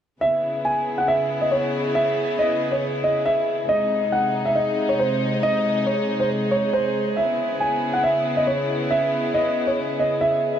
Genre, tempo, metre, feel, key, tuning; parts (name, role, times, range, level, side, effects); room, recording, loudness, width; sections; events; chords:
hip hop; 138 BPM; 4/4; half-time; C# minor; A4 = 442 Hz
dark concert grand piano; melody; 0.2-10.6 s; B#4 to G#5; -21 LUFS; equal; ping-pong delay
dark studio string section; sustained chords; 0.2-10.6 s; B#2 to G#4; -25 LUFS; equal
moderate huge ambient reverb, RT60 7.9 s; dark, warm production; -19 LUFS; side -9 dB against mid
0.2-10.6 A section
0.2 C#m7; 3.7 G#; 7.2 C#m7